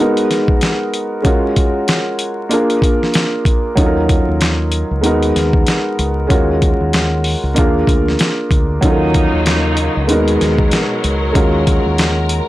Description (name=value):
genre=hip hop, boom-bap hip-hop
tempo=95 BPM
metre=4/4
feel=swing 59% on 16ths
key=Eb minor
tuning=A4 = 439 Hz
part: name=warm upright piano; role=accompaniment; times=0.0-12.5 s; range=Gb3 to Bb4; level=-16 LUFS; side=equal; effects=cassette tape, plate reverb
part: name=dusty soul sampler-style drum kit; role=drums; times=0.2-12.5 s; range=handclaps, hi-hat, kick drum, snare drum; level=-16 LUFS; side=equal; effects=none
part: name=deep dub fingered electric bass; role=bass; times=3.8-12.4 s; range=Db2 to Eb2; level=-18 LUFS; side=equal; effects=tube saturation
part: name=warm studio string section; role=sustained chords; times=8.8-12.5 s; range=Cb3 to Bb4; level=-20 LUFS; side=left 2 dB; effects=plate reverb
room=moderate studio reverb, RT60 0.5 s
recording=blown-out, overdriven recording, vinyl crackle, overdrive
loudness=-12 LUFS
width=side -16 dB against mid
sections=0.0-12.5 A section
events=break 0.0-3.8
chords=0.0 Abm9; 1.2 Gbmaj9; 2.5 Bb7; 3.8 Ebm7; 5.0 Abm9/Eb; 6.3 Gbmaj9/Eb; 7.6 Bb7; 8.8 Ebm7; 10.1 Abm9/Eb; 11.4 Gbmaj9/Eb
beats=0.62 | 1.25 1.88 2.51 3.15 | 3.78 4.41 5.04 5.67 | 6.30 6.93 7.57 8.20 | 8.83 9.46 10.09 10.72 | 11.36 11.99